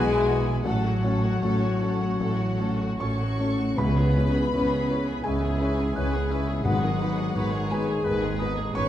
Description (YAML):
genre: cinematic, emotional film score for orchestra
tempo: 73-87 BPM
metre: 4/4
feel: rubato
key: C# minor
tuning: A4 = 440 Hz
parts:
  - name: clear studio violin section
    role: melody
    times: 0.0-8.9 s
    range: E4 to B4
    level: -36 LUFS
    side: left 5 dB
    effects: none
  - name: dark clarinet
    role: second line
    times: 0.0-8.9 s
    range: F#4 to C#5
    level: -34 LUFS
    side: left 1 dB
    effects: none
  - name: dark studio violin section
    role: second line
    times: 0.0-8.9 s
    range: F#5 to C#6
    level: -36 LUFS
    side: left 2 dB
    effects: none
  - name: mellow cor anglais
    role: second line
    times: 0.0-8.9 s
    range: B4 to F#5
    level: -37 LUFS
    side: right 3 dB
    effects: none
  - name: dark studio viola section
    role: accompaniment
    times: 0.0-8.9 s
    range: D#3 to C#4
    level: -36 LUFS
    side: equal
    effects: none
  - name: felt-muted upright piano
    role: accompaniment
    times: 0.0-8.9 s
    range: A1 to C#6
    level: -33 LUFS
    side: left 2 dB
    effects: none
  - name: mellow French horn section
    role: sustained chords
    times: 0.0-8.9 s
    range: F#3 to C#4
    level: -29 LUFS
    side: left 4 dB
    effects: none
  - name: dark studio cello section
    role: bass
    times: 0.0-8.9 s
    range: G#2 to C#3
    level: -30 LUFS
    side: right 1 dB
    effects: none
  - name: dark studio double bass section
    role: bass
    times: 0.0-8.9 s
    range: G#1 to C#2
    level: -29 LUFS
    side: right 2 dB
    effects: none
  - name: timpani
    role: percussion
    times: 3.8-7.7 s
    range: G#2 to C#3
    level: -29 LUFS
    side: left 1 dB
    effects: none
room: wet recital hall reverb, RT60 1.5 s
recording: dark, warm production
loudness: -22 LUFS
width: side -11 dB against mid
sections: 0.0-8.9 A section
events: none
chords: 0.0 Bsus4; 0.7 F#m/A; 3.8 C#m7; 6.7 G#m